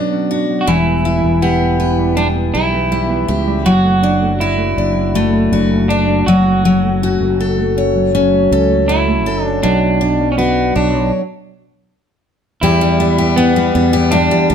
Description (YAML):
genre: acoustic pop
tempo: 80 BPM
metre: 4/4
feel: straight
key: unclear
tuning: A4 = 444 Hz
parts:
  - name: picked steel-string acoustic guitar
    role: accompaniment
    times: 0.0-14.5 s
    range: E2 to D5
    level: -15 LUFS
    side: left 3 dB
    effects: none
  - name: nylon-string guitar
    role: arpeggios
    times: 0.0-14.5 s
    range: F#3 to G4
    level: -20 LUFS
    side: right 6 dB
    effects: none
  - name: electric guitar at the edge of break-up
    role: second line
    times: 0.6-14.5 s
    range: B3 to F#4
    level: -18 LUFS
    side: right 1 dB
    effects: none
  - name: sustaining fretless electric bass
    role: bass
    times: 0.7-14.5 s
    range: E1 to E2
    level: -19 LUFS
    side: equal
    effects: none
room: moderate studio reverb, RT60 1.0 s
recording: none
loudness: -12 LUFS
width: side -8 dB against mid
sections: 0.0-12.6 A section; 12.6-14.5 B section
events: stop 11.1-12.6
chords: 0.0 Bmadd9; 0.7 Em; 3.7 D/F#; 6.3 F#m; 9.6 Bmadd9; 12.6 Em